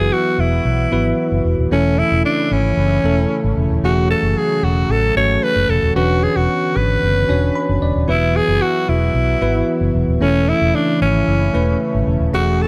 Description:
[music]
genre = pop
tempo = 113 BPM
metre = 4/4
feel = straight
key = E mixolydian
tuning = A4 = 442 Hz
[part]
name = breathy alto saxophone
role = melody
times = 0.0-12.7 s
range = C#4 to C#5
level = -21 LUFS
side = equal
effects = digital delay
[part]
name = bell-like tine electric piano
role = accompaniment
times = 0.0-12.7 s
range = E3 to B5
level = -23 LUFS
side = equal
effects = none
[part]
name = warm analog pad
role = sustained chords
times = 0.0-12.7 s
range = C#3 to C#5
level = -28 LUFS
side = equal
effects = subtle chorus
[part]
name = vintage muted fingered electric bass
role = bass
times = 0.0-12.6 s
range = D#1 to B1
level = -20 LUFS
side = equal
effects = none
[sound]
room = light reverb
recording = none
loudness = -17 LUFS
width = mono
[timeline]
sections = 0.0-12.7 A section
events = tine electric piano fill 7.3-8.1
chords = 0.0 Esus2; 1.7 F#madd9/E; 6.0 Bmadd9/E; 8.1 Esus2; 10.2 A/E

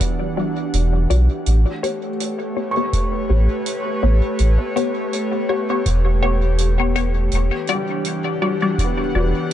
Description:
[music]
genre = ambient dub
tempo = 82 BPM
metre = 4/4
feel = swing 56% on 16ths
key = unclear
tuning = A4 = 436 Hz
[part]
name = airy breathy pad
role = sustained chords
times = 0.0-9.5 s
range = E3 to F#5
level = -23 LUFS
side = equal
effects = chorus
[part]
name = felt-muted upright piano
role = arpeggios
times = 0.0-9.5 s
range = G3 to C#6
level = -30 LUFS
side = right 3 dB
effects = dub echo
[part]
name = electronic kick drum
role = drums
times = 0.0-8.9 s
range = none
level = -22 LUFS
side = equal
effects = none
[part]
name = hi-hat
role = drums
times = 0.0-9.5 s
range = none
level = -31 LUFS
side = right 6 dB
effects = dub echo
[part]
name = filtered dub chord stab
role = stabs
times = 0.4-9.3 s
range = G3 to D5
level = -24 LUFS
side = left 4 dB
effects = phaser, wide subtle chorus, dub echo
[part]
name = soft dub sub bass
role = bass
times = 0.7-9.3 s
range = E1 to B1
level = -16 LUFS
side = equal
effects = none
[sound]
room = light reverb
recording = nothing above 10.4 kHz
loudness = -17 LUFS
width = side -11 dB against mid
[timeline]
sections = 0.0-9.5 A section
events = none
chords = 0.0 Em9; 1.5 A9; 7.3 Em9

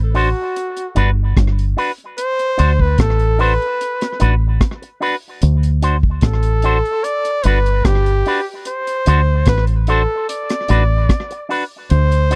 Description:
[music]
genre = roots reggae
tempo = 74 BPM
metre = 4/4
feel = straight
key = unclear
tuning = A4 = 440 Hz
[part]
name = deep dub fingered electric bass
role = bass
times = 0.0-12.4 s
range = G1 to D2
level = -17 LUFS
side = equal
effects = none
[part]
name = electric guitar with an envelope filter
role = accompaniment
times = 0.1-12.4 s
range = D4 to C5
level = -23 LUFS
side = equal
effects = tape echo
[part]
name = deep reggae drum kit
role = drums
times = 0.1-12.4 s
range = hi-hat, kick drum, rim click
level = -20 LUFS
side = equal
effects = slapback echo
[part]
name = clear flugelhorn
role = melody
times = 0.2-12.4 s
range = F#4 to D5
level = -22 LUFS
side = equal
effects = tape echo
[sound]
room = little or no reverb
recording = dry, close 1970s-style studio recording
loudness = -17 LUFS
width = mono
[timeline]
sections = 0.0-12.4 A section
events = none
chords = 0.0 D7; 0.6 Gmaj7; 2.2 D7; 3.8 Asus24; 5.4 D7; 7.0 Gmaj7; 8.7 D7; 10.3 Asus24

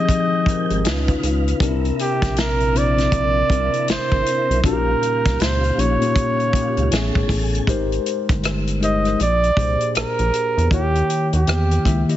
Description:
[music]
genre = R&B, neo-soul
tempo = 79 BPM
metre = 4/4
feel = swing 61% on 16ths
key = unclear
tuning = A4 = 441 Hz
[part]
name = trumpet with bucket mute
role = melody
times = 0.0-12.1 s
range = G4 to Eb5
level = -21 LUFS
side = right 2 dB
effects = slapback echo
[part]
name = tine electric piano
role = accompaniment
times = 0.0-12.2 s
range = A2 to Fb5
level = -22 LUFS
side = left 3 dB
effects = phaser
[part]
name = tonewheel organ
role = sustained chords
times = 0.0-7.7 s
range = C3 to G5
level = -31 LUFS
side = right 2 dB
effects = chorus vibrato, fast rotary speaker
[part]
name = warm soul drum kit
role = drums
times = 0.1-12.2 s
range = hi-hat, kick drum, rim click, snare drum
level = -23 LUFS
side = equal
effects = none
[part]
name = rubbery square bass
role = bass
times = 0.5-12.0 s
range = G1 to E2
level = -21 LUFS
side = equal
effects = none
[sound]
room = light reverb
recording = heavily compressed radio sound, nothing above 7.8 kHz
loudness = -16 LUFS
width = side -12 dB against mid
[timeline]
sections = 0.0-7.7 A section; 7.7-12.2 B section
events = none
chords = 0.0 Fm9; 0.8 Db9; 1.6 C7; 4.6 Eb9/Bb; 6.9 Amaj7; 7.7 Abmaj7; 9.2 Bb13; 10.7 Eb7b9

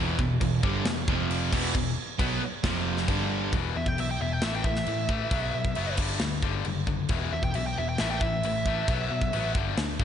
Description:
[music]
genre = hard rock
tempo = 135 BPM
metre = 4/4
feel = straight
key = unclear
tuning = A4 = 440 Hz
[part]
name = distorted electric guitar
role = riff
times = 0.0-3.5 s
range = E2 to B3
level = -34 LUFS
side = equal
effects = distortion
[part]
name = sludgy distorted guitar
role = riff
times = 0.0-3.5 s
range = E2 to B3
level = -31 LUFS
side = right 10 dB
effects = overdrive
[part]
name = tight distorted guitar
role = riff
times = 0.0-10.0 s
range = E2 to B3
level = -32 LUFS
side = left 10 dB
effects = distortion, slapback echo
[part]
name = picked electric bass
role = bass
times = 0.0-10.0 s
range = E1 to B2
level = -32 LUFS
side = equal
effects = none
[part]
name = tight metal drum kit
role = drums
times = 0.2-10.0 s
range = crash cymbal, kick drum, snare drum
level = -30 LUFS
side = equal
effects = none
[part]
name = bluesy overdriven lead guitar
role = melody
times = 3.8-9.5 s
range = E5 to G5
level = -32 LUFS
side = right 2 dB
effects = distortion, slapback echo
[sound]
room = moderate lush hall reverb, RT60 1.8 s, small room ambience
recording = big arena sound, nothing above 10.7 kHz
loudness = -25 LUFS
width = side -9 dB against mid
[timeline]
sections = 0.0-3.5 A section; 3.5-10.0 B section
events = lead electric guitar solo 3.5-10.0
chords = 0.0 Em; 1.1 F5; 1.5 E5; 2.6 F5; 3.1 G5; 3.5 E5; 4.4 A5; 5.3 B5; 6.0 G5; 7.1 E5; 8.0 A5; 8.9 B5

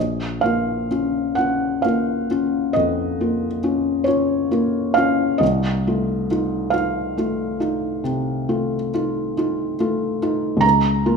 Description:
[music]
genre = classical, romantic nocturne for solo piano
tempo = 42-48 BPM (dotted quarters)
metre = 12/8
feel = rubato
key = Bb minor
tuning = A4 = 440 Hz
[part]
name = felt-muted upright piano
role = solo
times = 0.0-11.2 s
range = Bb1 to Bb5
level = -18 LUFS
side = equal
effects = none
[sound]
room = moderate large studio reverb, RT60 1.1 s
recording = heard from further back in the room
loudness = -18 LUFS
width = side -5 dB against mid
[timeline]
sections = 0.0-11.2 A section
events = none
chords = 0.0 Bbm; 5.4 F7/C; 10.6 Bbm/Db

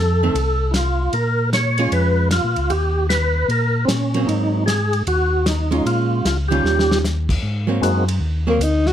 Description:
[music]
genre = soul jazz organ trio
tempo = 153 BPM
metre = 4/4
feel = swing 64% on 8ths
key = Ab mixolydian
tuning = A4 = 440 Hz
[part]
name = percussive tonewheel organ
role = melody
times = 0.0-8.1 s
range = Ab3 to Db5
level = -20 LUFS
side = equal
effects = slow rotary speaker, overdrive, chorus vibrato, plate reverb
[part]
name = tonewheel organ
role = bass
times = 0.0-8.9 s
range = C2 to Bb2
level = -20 LUFS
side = equal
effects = chorus vibrato, slow rotary speaker
[part]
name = archtop guitar, miked and amplified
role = accompaniment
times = 0.2-8.6 s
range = Eb3 to F4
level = -23 LUFS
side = right 4 dB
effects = none
[part]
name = warm soul drum kit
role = drums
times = 0.4-8.9 s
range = crash cymbal, hi-hat, kick drum, ride cymbal, snare drum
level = -26 LUFS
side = equal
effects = none
[part]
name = breathy tenor saxophone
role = melody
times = 8.5-8.9 s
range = Bb3 to Gb4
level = -17 LUFS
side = left 2 dB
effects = none
[sound]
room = light reverb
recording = none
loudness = -16 LUFS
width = side -10 dB against mid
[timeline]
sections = 0.0-7.4 A section; 7.4-8.9 B section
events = drum fill 6.6-7.0; tenor saxophone solo 7.4-8.9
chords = 0.0 F; 1.1 Bbm7; 2.7 Eb7; 4.3 Ab9; 5.8 Bbm7; 6.6 Eb9; 7.4 Ab9

